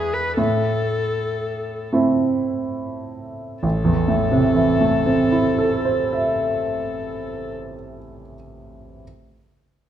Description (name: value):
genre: classical, romantic duo for viola and grand piano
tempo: 33-40 BPM (dotted quarters)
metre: 6/8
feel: rubato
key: A minor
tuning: A4 = 442 Hz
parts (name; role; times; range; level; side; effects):
- rich viola; melody; 0.0-7.5 s; G#4 to B4; -26 LUFS; left 4 dB; none
- clear grand piano; accompaniment; 0.0-9.0 s; A1 to E5; -20 LUFS; right 2 dB; none
room: wet recital hall reverb, RT60 1.4 s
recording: dark, warm production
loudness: -18 LUFS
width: side -10 dB against mid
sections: 0.0-3.6 A section; 3.6-6.9 B section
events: slowing down 0.0-3.6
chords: 0.4 Am